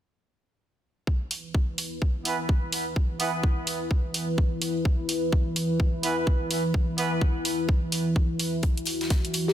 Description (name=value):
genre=bass house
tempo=127 BPM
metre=4/4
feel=swing 60% on 16ths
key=unclear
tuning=A4 = 440 Hz
part: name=dark analog pad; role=sustained chords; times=1.1-9.5 s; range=E3 to B4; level=-29 LUFS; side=equal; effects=chorus, sidechain pumping
part: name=electronic kick drum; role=drums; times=1.1-9.2 s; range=none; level=-23 LUFS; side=equal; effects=studio reverb
part: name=electronic hi-hat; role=drums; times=1.3-9.5 s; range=none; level=-30 LUFS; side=right 1 dB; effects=studio reverb
part: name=clear horn section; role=stabs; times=2.3-7.1 s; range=E3 to B4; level=-31 LUFS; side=right 2 dB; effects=sidechain pumping, low-pass filter, tape echo
part: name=modern studio drum kit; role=drums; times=8.6-9.5 s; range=hi-hat, snare drum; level=-37 LUFS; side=left 3 dB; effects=high-pass filter on hats, studio reverb, high-pass filter on snare, high-pass filter on room
part: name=vibraphone with soft mallets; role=melody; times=9.5 s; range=G4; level=-22 LUFS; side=left 1 dB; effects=none
room=light reverb, small room ambience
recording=dense, heavily limited modern master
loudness=-24 LUFS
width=side -11 dB against mid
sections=1.1-9.5 A section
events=filter sweep on horn section 1.1-9.5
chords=1.1 E5